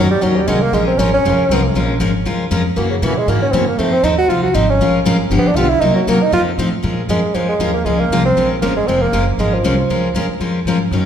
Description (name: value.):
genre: acoustic string swing (jazz manouche).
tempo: 236 BPM.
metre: 4/4.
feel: swing 56% on 8ths.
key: Bb minor.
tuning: A4 = 440 Hz.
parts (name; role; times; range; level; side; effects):
warm bassoon; melody; 0.0-10.3 s; Db3 to Gb4; -17 LUFS; right 2 dB; none.
picked steel-string acoustic guitar; accompaniment; 0.0-11.1 s; C3 to Bb4; -17 LUFS; left 2 dB; none.
upright bass; bass; 0.0-11.1 s; F1 to Bb2; -21 LUFS; equal; none.
room: wet recital hall reverb, RT60 1.5 s.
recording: recorded in a church or concert hall.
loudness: -13 LUFS.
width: side -8 dB against mid.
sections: 0.0-6.8 A section; 6.8-11.1 B section.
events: bassoon solo 0.0-6.8.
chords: 0.0 Ebm7; 0.7 Bbm7; 2.8 Gb7; 3.8 F7#9; 4.8 Bbm7; 5.3 G7; 5.8 Cm7b5; 6.3 F7; 6.8 Bbm7.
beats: 0.22 0.47 | 0.73 0.98 1.24 1.49 | 1.74 2.00 2.25 2.51 | 2.76 3.02 3.27 3.53 | 3.78 4.04 4.29 4.54 | 4.80 5.05 5.31 5.56 | 5.82 6.07 6.32 6.58 | 6.83 7.09 7.34 7.60 | 7.85 8.11 8.36 8.62 | 8.87 9.13 9.38 9.64 | 9.89 10.15 10.40 10.66 | 10.91.